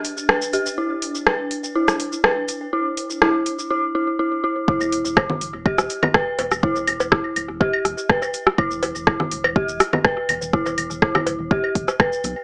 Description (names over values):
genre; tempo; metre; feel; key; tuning
minimal techno; 123 BPM; 4/4; straight; unclear; A4 = 439 Hz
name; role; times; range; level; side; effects
house drum kit; drums; 0.0-12.3 s; cabasa, hi-hat, rim click; -20 LUFS; equal; none
swarming drone; texture; 0.0-3.7 s; D4; -32 LUFS; equal; built-in reverb, sidechain pumping
dark detuned synth bell; riff; 0.3-12.0 s; E4 to B4; -22 LUFS; equal; chorus, sidechain pumping, tape echo
electronic kick drum; drums; 4.7-12.1 s; none; -21 LUFS; equal; none
rubbery square bass; bass; 4.8-12.3 s; D1 to B1; -34 LUFS; equal; sidechain pumping
electronic claves, rim click, cowbell and congas; percussion; 4.8-12.1 s; none; -20 LUFS; equal; tape echo
room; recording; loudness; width
moderate studio reverb, RT60 0.6 s; dry, gritty hardware recording, small speaker sound; -18 LUFS; side -36 dB against mid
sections
0.0-4.7 A section; 4.7-12.4 B section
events
build-up 0.0-4.7; drop 4.7-12.4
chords
none